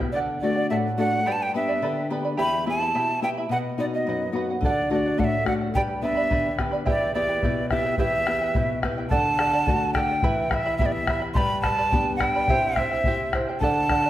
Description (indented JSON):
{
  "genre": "andean folk, Andean ensemble",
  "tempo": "107 BPM",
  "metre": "2/4",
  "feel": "straight",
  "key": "unclear",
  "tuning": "A4 = 440 Hz",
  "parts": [
    { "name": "charango", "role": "accompaniment", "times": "0.0-14.1 s", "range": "E4 to B5", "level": "-28 LUFS", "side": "right 2 dB", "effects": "none" },
    { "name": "nylon-string guitar", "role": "accompaniment", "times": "0.0-14.1 s", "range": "E2 to G4", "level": "-28 LUFS", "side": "left 3 dB", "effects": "none" },
    { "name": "bombo", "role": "percussion", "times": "0.0-0.1, 4.6-14.0 s", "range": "none", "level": "-27 LUFS", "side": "left 1 dB", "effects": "none" },
    { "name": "breathy quena", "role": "melody", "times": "0.1-14.1 s", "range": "D5 to C6", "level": "-25 LUFS", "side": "right 1 dB", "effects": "none" }
  ],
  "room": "wet recital hall reverb, RT60 1.4 s",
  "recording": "none",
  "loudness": "-21 LUFS",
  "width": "side -13 dB against mid",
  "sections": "0.1-9.1 A section; 9.1-14.1 B section",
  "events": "none",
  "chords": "0.1 D; 1.3 G; 2.4 Em; 3.5 B; 4.6 D; 5.7 G; 6.9 Em; 9.1 D; 10.2 Em; 11.4 G; 12.5 C"
}